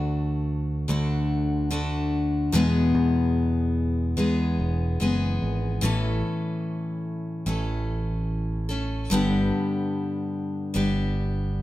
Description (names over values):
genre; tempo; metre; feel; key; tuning
acoustic folk duo or small band; 73 BPM; 4/4; straight; A major; A4 = 441 Hz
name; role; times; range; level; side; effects
picked steel-string acoustic guitar; accompaniment; 0.0-11.6 s; E2 to A4; -25 LUFS; left 2 dB; none
picked electric bass; bass; 0.0-11.6 s; E1 to E2; -26 LUFS; right 1 dB; none
room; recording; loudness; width
light reverb; none; -23 LUFS; side -15 dB against mid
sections
0.0-5.8 A section; 5.8-11.6 B section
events
none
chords
0.0 D; 2.5 E; 5.8 A; 9.1 G